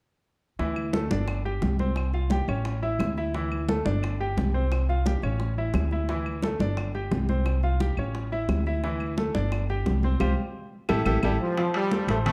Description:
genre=latin, salsa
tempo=175 BPM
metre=4/4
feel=straight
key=D minor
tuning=A4 = 441 Hz
part: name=bright baby grand piano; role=accompaniment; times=0.6-12.3 s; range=E3 to G5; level=-33 LUFS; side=equal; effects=none
part: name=upright bass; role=bass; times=0.6-12.3 s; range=G1 to D2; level=-29 LUFS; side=equal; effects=none
part: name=bongos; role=percussion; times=0.6-12.3 s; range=none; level=-38 LUFS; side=equal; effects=none
part: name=congas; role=percussion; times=0.6-12.3 s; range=none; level=-34 LUFS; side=equal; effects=none
part: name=claves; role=percussion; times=0.8-11.3 s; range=none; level=-44 LUFS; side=equal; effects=none
part: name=brilliant trombone section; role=melody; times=11.2-12.3 s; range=F3 to A3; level=-29 LUFS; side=equal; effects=none
part: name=timbales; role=percussion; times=11.6-12.3 s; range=none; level=-36 LUFS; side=equal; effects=none
room=moderate large studio reverb, RT60 1.3 s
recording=dark, warm production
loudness=-27 LUFS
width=mono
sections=0.6-11.6 A section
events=band accent 10.2-11.6; drum fill 10.7-11.6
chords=0.6 Dsus2; 1.3 G5; 2.0 Csus4; 2.7 A; 3.3 Dsus2; 4.0 G5; 4.7 Csus4; 5.4 A; 6.1 Dsus2; 6.8 G5; 7.5 Csus4; 8.2 A; 8.8 Dsus2; 9.5 G5; 10.2 Csus4; 10.9 A5; 11.6 Dm7 (rootless)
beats=| 0.59 0.94 1.28 1.62 | 1.97 2.31 2.65 3.00 | 3.34 3.69 4.03 4.37 | 4.72 5.06 5.40 5.75 | 6.09 6.43 6.78 7.12 | 7.46 7.81 8.15 8.49 | 8.84 9.18 9.52 9.86 | 10.21 10.55 10.89 11.23 | 11.57 11.92 12.26

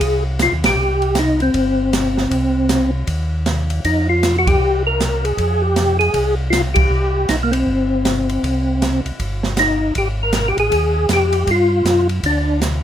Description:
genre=soul jazz organ trio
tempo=157 BPM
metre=4/4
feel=swing 63% on 8ths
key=C minor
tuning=A4 = 440 Hz
part: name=percussive tonewheel organ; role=melody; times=0.0-12.6 s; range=Bb3 to Bb4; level=-17 LUFS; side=left 1 dB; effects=slow rotary speaker, chorus vibrato
part: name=mellow tonewheel organ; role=bass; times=0.0-12.8 s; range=G1 to G2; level=-20 LUFS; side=equal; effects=slow rotary speaker
part: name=open jazz drum kit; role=drums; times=0.0-12.7 s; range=hi-hat, kick drum, ride cymbal, snare drum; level=-22 LUFS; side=right 2 dB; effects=none
room=little or no reverb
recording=close, detailed microphones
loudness=-15 LUFS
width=side -10 dB against mid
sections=0.0-12.8 A section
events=band accent 0.6, 4.4, 6.7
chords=0.0 Fm9; 0.8 Cm; 3.8 Fmadd9; 6.9 Cm; 10.0 Ab5; 11.5 G7(no3)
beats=0.01 0.40 | 0.78 1.17 1.55 1.93 | 2.31 2.70 3.08 3.46 | 3.85 4.23 4.61 4.99 | 5.38 5.76 6.14 6.52 | 6.90 7.28 7.67 8.05 | 8.43 8.81 9.19 9.57 | 9.95 10.33 10.71 11.09 | 11.47 11.86 12.24 12.62

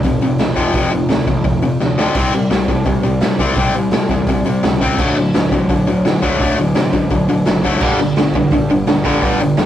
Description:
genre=punk rock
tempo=170 BPM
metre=4/4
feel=straight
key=unclear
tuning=A4 = 436 Hz
part: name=distorted electric guitar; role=riff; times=0.0-9.7 s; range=F2 to C4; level=-15 LUFS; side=left 2 dB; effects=overdrive
part: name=fuzz picked electric bass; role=bass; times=0.0-9.7 s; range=F1 to D3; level=-22 LUFS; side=right 1 dB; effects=overdrive
part: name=raw garage drum kit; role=drums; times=0.0-9.7 s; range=crash cymbal, hi-hat, kick drum, snare drum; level=-19 LUFS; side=right 1 dB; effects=none
part: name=overdriven electric guitar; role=riff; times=7.8-9.7 s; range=G2 to G3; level=-18 LUFS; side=right 4 dB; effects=none
room=moderate booth ambience, RT60 0.2 s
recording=rough rehearsal-room recording, warm saturation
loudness=-13 LUFS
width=side -11 dB against mid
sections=0.0-9.7 A section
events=drum fill 1.8-2.2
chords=0.0 F5; 2.2 C5; 5.0 D; 7.8 G5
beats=0.04 0.39 | 0.74 1.10 1.45 1.80 | 2.16 2.51 2.86 3.22 | 3.57 3.92 4.28 4.63 | 4.98 5.34 5.69 6.04 | 6.40 6.75 7.11 7.46 | 7.81 8.16 8.52 8.87 | 9.23 9.58

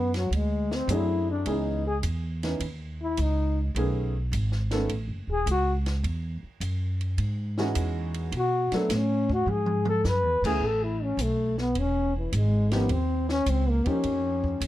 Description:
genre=jazz, small-group swing and bop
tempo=105 BPM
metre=4/4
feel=swing 69% on 8ths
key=E major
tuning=A4 = 439 Hz
part: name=breathy trombone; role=melody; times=0.0-14.7 s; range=E3 to B4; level=-27 LUFS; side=left 2 dB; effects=plate reverb
part: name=upright bass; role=bass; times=0.0-14.7 s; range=D#1 to B2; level=-27 LUFS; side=equal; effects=none
part: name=compact cocktail drum kit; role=drums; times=0.1-14.7 s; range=crash cymbal, hi-hat, kick drum, ride cymbal, snare drum, toms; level=-36 LUFS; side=right 1 dB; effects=none
part: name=warm upright piano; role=accompaniment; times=0.9-14.6 s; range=D#3 to B4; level=-30 LUFS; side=right 1 dB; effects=none
room=light reverb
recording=dark, warm production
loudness=-24 LUFS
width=side -14 dB against mid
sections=0.0-10.6 A section; 10.6-14.7 A section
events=trombone solo 0.0-14.7; drum fill 9.5-10.0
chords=0.3 D7#11; 1.5 C#m9; 3.8 B13; 6.0 Emaj13; 8.3 Bm7; 9.5 E13; 10.6 Amaj9; 12.9 D#9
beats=0.33 0.90 | 1.47 2.04 2.61 3.19 | 3.76 4.33 4.90 5.47 | 6.04 6.62 7.19 7.76 | 8.33 8.90 9.47 10.05 | 10.62 11.19 11.76 12.33 | 12.90 13.48 14.05 14.62

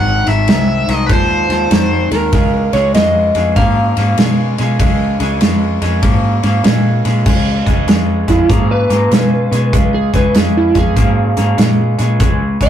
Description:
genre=electric blues shuffle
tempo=97 BPM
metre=4/4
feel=swing 66% on 8ths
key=Db mixolydian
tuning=A4 = 440 Hz
part: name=overdriven electric guitar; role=melody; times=0.0-2.1 s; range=Cb5 to Gb5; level=-17 LUFS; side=left 1 dB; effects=none
part: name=electric guitar through a small old amp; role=riff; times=0.0-12.7 s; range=Ab2 to Bb3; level=-17 LUFS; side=left 1 dB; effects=none
part: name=vintage muted fingered electric bass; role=bass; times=0.0-12.7 s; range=Ab1 to Cb3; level=-17 LUFS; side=equal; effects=none
part: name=natural country drum kit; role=drums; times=0.3-12.7 s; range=crash cymbal, hi-hat, kick drum, ride cymbal, snare drum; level=-15 LUFS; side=equal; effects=none
part: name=electric slide guitar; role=second line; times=2.1-12.7 s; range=Fb4 to F5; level=-16 LUFS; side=right 1 dB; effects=none
room=moderate booth ambience, RT60 0.2 s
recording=rough rehearsal-room recording, warm saturation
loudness=-11 LUFS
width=side -10 dB against mid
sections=0.0-7.3 A section; 7.3-12.7 B section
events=electric slide guitar solo 7.3-12.7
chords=0.0 Ab6; 2.3 Db6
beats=0.48 1.09 1.71 | 2.33 2.95 3.56 4.18 | 4.80 5.41 6.03 6.65 | 7.26 7.88 8.50 9.11 | 9.73 10.35 10.97 11.58 | 12.20

